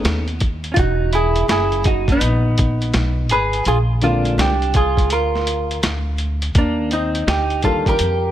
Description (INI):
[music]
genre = hip hop, jazz-hop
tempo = 83 BPM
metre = 4/4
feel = swing 65% on 16ths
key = unclear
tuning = A4 = 440 Hz
[part]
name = vintage hollow-body jazz guitar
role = melody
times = 0.0-8.3 s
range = D4 to B4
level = -20 LUFS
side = right 1 dB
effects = none
[part]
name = clean electric guitar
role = second line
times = 0.0-8.3 s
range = A#3 to G#4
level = -25 LUFS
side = right 2 dB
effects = wide subtle chorus
[part]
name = dark upright piano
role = accompaniment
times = 0.0-7.9 s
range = D3 to G#4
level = -23 LUFS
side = left 3 dB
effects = none
[part]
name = upright bass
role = bass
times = 0.0-8.3 s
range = E1 to E#2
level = -20 LUFS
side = equal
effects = none
[part]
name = lo-fi sampler-style drum kit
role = drums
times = 0.0-8.2 s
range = hi-hat, kick drum, snare drum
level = -20 LUFS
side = equal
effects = none
[sound]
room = little or no reverb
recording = lossy compression artefacts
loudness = -16 LUFS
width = side -12 dB against mid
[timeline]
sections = 0.0-8.3 A section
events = none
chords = 0.0 B7; 0.8 Emaj9; 3.7 A#7; 6.6 D#maj9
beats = 0.05 | 0.77 1.49 2.21 2.94 | 3.66 4.38 5.11 5.83 | 6.55 7.28 8.00